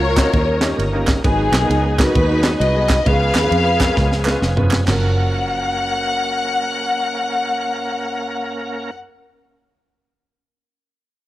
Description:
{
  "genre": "uptempo gospel",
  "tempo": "132 BPM",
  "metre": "4/4",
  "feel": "swing 63% on 8ths",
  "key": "F# major",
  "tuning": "A4 = 440 Hz",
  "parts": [
    { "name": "warm studio string section", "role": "melody", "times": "0.0-8.9 s", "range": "B3 to F#5", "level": "-20 LUFS", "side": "left 2 dB", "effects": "none" },
    { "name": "bright tonewheel organ", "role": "sustained chords", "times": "0.0-8.9 s", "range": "E#3 to B4", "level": "-27 LUFS", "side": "right 2 dB", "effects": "slow rotary speaker, overdrive, chorus vibrato" },
    { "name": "fingered electric bass", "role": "bass", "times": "0.0-8.9 s", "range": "E#1 to E#2", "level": "-20 LUFS", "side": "equal", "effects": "none" },
    { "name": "warm upright piano", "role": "accompaniment", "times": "0.2-8.9 s", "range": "F#2 to D#5", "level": "-26 LUFS", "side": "equal", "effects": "plate reverb" },
    { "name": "crisp fusion drum kit", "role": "drums", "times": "0.2-5.0 s", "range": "crash cymbal, kick drum, ride cymbal, snare drum, toms", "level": "-19 LUFS", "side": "equal", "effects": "cassette tape" },
    { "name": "group handclap", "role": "percussion", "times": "0.2-5.1 s", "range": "none", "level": "-24 LUFS", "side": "right 4 dB", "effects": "none" }
  ],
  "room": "light reverb",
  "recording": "home recording on cassette",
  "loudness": "-15 LUFS",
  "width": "side -15 dB against mid",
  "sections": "0.0-4.9 A section; 4.9-8.5 B section",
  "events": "drum fill 4.0-4.9; tonewheel organ fill 4.2-4.9",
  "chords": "0.3 D#7; 1.2 G#m7; 3.1 C#7; 4.9 F#maj7"
}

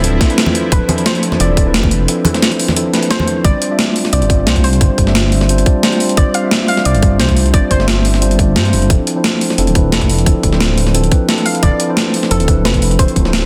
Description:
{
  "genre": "liquid drum and bass",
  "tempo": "176 BPM",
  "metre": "4/4",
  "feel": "swing 53% on 16ths",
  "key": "unclear",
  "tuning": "A4 = 441 Hz",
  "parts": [
    { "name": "soft round pluck", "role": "melody", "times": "0.0-8.4, 11.5-13.5 s", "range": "A4 to F5", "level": "-24 LUFS", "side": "equal", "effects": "chorus, dub echo" },
    { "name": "mellow tine electric piano", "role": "accompaniment", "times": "0.0-13.5 s", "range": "F3 to E5", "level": "-20 LUFS", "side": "equal", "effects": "none" },
    { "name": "lush unison pad", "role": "sustained chords", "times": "0.0-3.4 s", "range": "F3 to E4", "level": "-27 LUFS", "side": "equal", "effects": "chorus, sidechain pumping" },
    { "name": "dark detuned saw bass", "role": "bass", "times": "0.0-13.5 s", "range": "D1 to G2", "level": "-17 LUFS", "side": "equal", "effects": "none" },
    { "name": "breakbeat sampler-style drum kit", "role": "drums", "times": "0.0-13.5 s", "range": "hi-hat, snare drum", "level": "-18 LUFS", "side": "equal", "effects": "overdrive" },
    { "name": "electronic kick drum", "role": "drums", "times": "0.2-13.2 s", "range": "none", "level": "-15 LUFS", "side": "equal", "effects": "none" },
    { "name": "congas", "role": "percussion", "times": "0.5-3.3 s", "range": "none", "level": "-21 LUFS", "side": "equal", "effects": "none" }
  ],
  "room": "light reverb",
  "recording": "dense, heavily limited modern master",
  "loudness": "-13 LUFS",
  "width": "mono",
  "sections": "0.0-3.4 A section; 3.4-13.5 A section",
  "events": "drop 0.0-3.4, 3.4-13.5",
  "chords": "0.0 Dm9; 3.4 G7sus4; 8.9 Dm9"
}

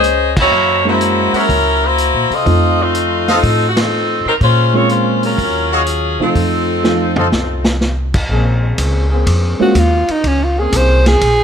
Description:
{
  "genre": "jazz, big band swing",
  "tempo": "123 BPM",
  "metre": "4/4",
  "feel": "swing 68% on 8ths",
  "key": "Bb minor",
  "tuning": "A4 = 439 Hz",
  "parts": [
    { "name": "clear saxophone section", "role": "melody", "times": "0.0-7.8 s", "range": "F3 to Eb5", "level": "-14 LUFS", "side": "left 2 dB", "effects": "none" },
    { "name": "upright bass", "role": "bass", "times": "0.0-11.4 s", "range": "Bb1 to C3", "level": "-16 LUFS", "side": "equal", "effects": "none" },
    { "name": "vintage drum kit", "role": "drums", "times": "0.0-11.4 s", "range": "crash cymbal, hi-hat, kick drum, ride cymbal, snare drum, toms", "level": "-20 LUFS", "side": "equal", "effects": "none" },
    { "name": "dark grand piano", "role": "accompaniment", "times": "0.8-9.7 s", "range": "F3 to Gb4", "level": "-18 LUFS", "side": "right 3 dB", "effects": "none" },
    { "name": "clear trumpet section", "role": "stabs", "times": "1.3-7.3 s", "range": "Gb4 to Gb5", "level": "-20 LUFS", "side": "equal", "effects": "none" },
    { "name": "bright trombone section", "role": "sustained chords", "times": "8.3-11.2 s", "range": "Db3 to Ab4", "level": "-22 LUFS", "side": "left 3 dB", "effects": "none" },
    { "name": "bright alto saxophone", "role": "melody", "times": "9.6-11.4 s", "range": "Db4 to C5", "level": "-13 LUFS", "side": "right 1 dB", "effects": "none" }
  ],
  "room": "light reverb",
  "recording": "none",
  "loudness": "-11 LUFS",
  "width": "side -7 dB against mid",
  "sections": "0.0-8.3 A section; 8.3-11.4 B section",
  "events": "band accent 0.3, 3.7; drum fill 6.8-7.8; alto saxophone solo 8.3-11.4",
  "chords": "0.0 Bbm9; 0.5 Gb7; 2.5 F7; 4.4 Bbm9; 5.4 Ebm9; 6.4 F7; 8.3 Bbm9"
}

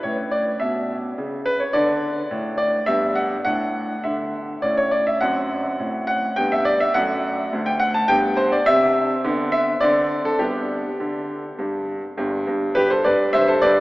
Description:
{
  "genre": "classical-period piano sonatina",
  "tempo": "104 BPM",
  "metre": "3/4",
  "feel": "straight",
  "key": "G major from 5.2 s",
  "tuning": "A4 = 440 Hz",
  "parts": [
    { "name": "clear grand piano", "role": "solo", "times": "0.0-13.8 s", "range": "G1 to A5", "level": "-18 LUFS", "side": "equal", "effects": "none" }
  ],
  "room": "wet cathedral reverb, RT60 4.9 s",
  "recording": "in a vast, echoing space, AM radio sound",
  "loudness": "-19 LUFS",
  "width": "side -19 dB against mid",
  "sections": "0.0-12.2 A section; 12.2-13.8 B section",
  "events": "none",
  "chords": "0.0 A; 1.7 D5; 2.9 Em/G; 3.5 Asus4; 4.6 A; 5.2 F#dim; 6.4 G; 6.9 D/F#; 8.1 G; 8.7 N.C.; 9.2 Bmadd11/D; 9.8 Amadd11/D; 10.4 G"
}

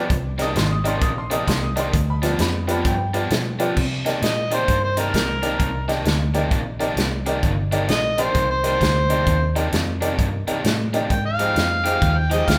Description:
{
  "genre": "electric blues shuffle",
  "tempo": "131 BPM",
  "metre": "4/4",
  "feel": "swing 63% on 8ths",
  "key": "C minor",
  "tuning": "A4 = 440 Hz",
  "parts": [
    { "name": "overdriven electric guitar", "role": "riff", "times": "0.0-12.6 s", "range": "G2 to G4", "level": "-29 LUFS", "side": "equal", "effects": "none" },
    { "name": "vintage muted fingered electric bass", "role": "bass", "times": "0.1-12.6 s", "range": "G1 to C3", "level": "-26 LUFS", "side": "equal", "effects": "none" },
    { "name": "natural country drum kit", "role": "drums", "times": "0.1-12.6 s", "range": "crash cymbal, hi-hat, kick drum, snare drum", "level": "-26 LUFS", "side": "equal", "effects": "none" },
    { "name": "clear upright piano", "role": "accompaniment", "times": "0.4-12.4 s", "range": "Eb4 to Eb6", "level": "-29 LUFS", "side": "equal", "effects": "none" },
    { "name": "overdriven harmonica", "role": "melody", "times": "4.2-12.6 s", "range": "Bb4 to G5", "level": "-24 LUFS", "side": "equal", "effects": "none" }
  ],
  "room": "moderate large studio reverb, RT60 1.3 s",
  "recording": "band playing live in one room",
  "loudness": "-21 LUFS",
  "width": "mono",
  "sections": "0.0-3.8 A section; 3.8-12.6 B section",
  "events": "none",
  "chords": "0.1 Cm9; 1.9 G7; 3.8 Cm9; 11.1 Fm9"
}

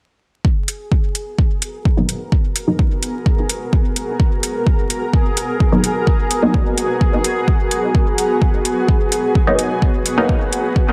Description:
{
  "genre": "dub techno",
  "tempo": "128 BPM",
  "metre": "4/4",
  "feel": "straight",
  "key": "G# minor",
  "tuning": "A4 = 443 Hz",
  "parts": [
    { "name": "granular cloud pad", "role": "sustained chords", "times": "2.1-10.9 s", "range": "B3 to B4", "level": "-24 LUFS", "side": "equal", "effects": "built-in reverb, sidechain pumping" },
    { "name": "electronic kick drum", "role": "drums", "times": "0.4-10.9 s", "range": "none", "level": "-18 LUFS", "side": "equal", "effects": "overdrive" },
    { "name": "bubbling stepped-filter texture", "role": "texture", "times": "0.7-10.9 s", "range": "G#4", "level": "-30 LUFS", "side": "equal", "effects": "chorus, built-in reverb, sidechain pumping" },
    { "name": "electronic hi-hat", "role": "drums", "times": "0.7-10.6 s", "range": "none", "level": "-24 LUFS", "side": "equal", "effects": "overdrive" },
    { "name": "filtered dub chord stab", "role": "stabs", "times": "2.0-2.8, 5.7-6.6, 9.5-10.3 s", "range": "F#3 to D#4", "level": "-22 LUFS", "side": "equal", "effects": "phaser, sidechain pumping, dub echo" }
  ],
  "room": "light reverb",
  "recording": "vinyl crackle",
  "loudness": "-17 LUFS",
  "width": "mono",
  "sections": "0.4-10.9 A section",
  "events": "none",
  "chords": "0.4 G#m9"
}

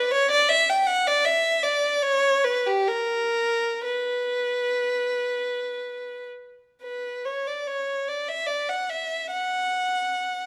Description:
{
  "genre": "classical, free, expressive piece for unaccompanied violin",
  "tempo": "50-81 BPM",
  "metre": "3/4",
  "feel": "rubato",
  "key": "B minor",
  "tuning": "A4 = 439 Hz",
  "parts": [
    { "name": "rich violin", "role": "solo", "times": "0.0-10.5 s", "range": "G4 to G5", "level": "-25 LUFS", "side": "equal", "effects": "none" }
  ],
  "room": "moderate recital hall reverb, RT60 1.6 s",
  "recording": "none",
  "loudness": "-24 LUFS",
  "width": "mono",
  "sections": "0.0-6.8 A section; 6.8-10.5 B section",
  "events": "none",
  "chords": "none"
}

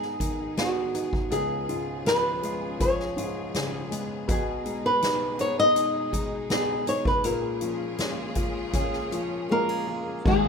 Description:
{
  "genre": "pop ballad",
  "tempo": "81 BPM",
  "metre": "4/4",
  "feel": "straight",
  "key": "unclear",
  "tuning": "A4 = 439 Hz",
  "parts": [
    { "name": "flamenco guitar", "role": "melody", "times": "0.0-10.5 s", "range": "Ab3 to Eb5", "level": "-26 LUFS", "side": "equal", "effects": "none" },
    { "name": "warm baby grand piano", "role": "accompaniment", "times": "0.0-10.5 s", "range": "Eb1 to F4", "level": "-32 LUFS", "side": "left 2 dB", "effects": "none" },
    { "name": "clear symphonic string section", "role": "sustained chords", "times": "0.0-10.5 s", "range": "Cb3 to Ab4", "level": "-39 LUFS", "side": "equal", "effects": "none" },
    { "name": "fingerpicked steel-string acoustic guitar", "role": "arpeggios", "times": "0.0-10.5 s", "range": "Ab2 to Ab4", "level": "-37 LUFS", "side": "left 3 dB", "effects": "none" },
    { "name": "soft-mallet drum kit", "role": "drums", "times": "0.0-10.4 s", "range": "crash cymbal, hi-hat, kick drum, snare drum", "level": "-30 LUFS", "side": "equal", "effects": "none" }
  ],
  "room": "studio ambience",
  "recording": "rough home demo mix",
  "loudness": "-24 LUFS",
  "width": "side -6 dB against mid",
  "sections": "0.0-10.3 A section",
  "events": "none",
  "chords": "0.0 Abm; 1.3 Db7; 4.3 Abm/Cb; 7.2 Bbm7"
}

